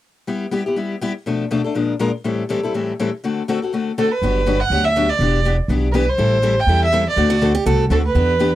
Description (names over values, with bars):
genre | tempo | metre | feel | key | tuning
acoustic string swing (jazz manouche) | 244 BPM | 4/4 | swing 57% on 8ths | G major | A4 = 444 Hz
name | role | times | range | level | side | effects
picked steel-string acoustic guitar | accompaniment | 0.3-8.5 s | A2 to Bb4 | -20 LUFS | left 4 dB | none
warm violin | melody | 4.0-8.6 s | A4 to G5 | -18 LUFS | right 2 dB | none
upright bass | bass | 4.2-8.5 s | E1 to E2 | -18 LUFS | right 1 dB | none
picked acoustic archtop guitar | second line | 7.3-7.8 s | F#4 to A4 | -23 LUFS | right 5 dB | none
room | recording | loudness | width
little or no reverb | dry, close 1970s-style studio recording | -16 LUFS | side -14 dB against mid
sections
0.3-4.2 A section; 4.2-8.6 B section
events
none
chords
0.3 G6; 1.3 Bm7b5; 1.7 Bb7; 2.2 Am7; 3.2 D7; 4.2 Gmaj7; 5.2 Em7; 6.2 Am7; 7.2 D7